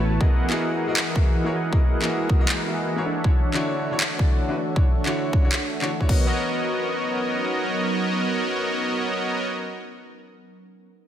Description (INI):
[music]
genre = future bass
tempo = 158 BPM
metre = 4/4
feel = swing 55% on 16ths, half-time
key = B major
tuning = A4 = 440 Hz
[part]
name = ethereal airy pad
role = sustained chords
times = 0.0-9.5 s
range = E3 to D#5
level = -31 LUFS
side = right 1 dB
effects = ensemble chorus, built-in reverb, sidechain pumping
[part]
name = soft supersaw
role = riff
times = 0.0-9.5 s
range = E3 to A5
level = -26 LUFS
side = equal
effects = sidechain pumping, low-pass filter, digital delay
[part]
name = bright concert grand piano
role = accompaniment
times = 0.2-9.5 s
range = D3 to E5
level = -30 LUFS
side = left 2 dB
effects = sidechain pumping, digital delay
[part]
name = electronic kick drum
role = drums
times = 0.2-6.2 s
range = none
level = -19 LUFS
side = equal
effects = small room ambience
[part]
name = trap drum kit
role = drums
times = 0.5-6.2 s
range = crash cymbal, handclaps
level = -27 LUFS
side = equal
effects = overdrive, small room ambience
[sound]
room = moderate lush hall reverb, RT60 2.1 s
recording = none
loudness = -20 LUFS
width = side -10 dB against mid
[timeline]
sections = 0.0-6.3 A section; 6.3-9.3 B section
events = filter sweep on supersaw synth 0.0-6.3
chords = 0.2 Emaj9#11; 3.1 Dmaj9; 6.1 Bmaj9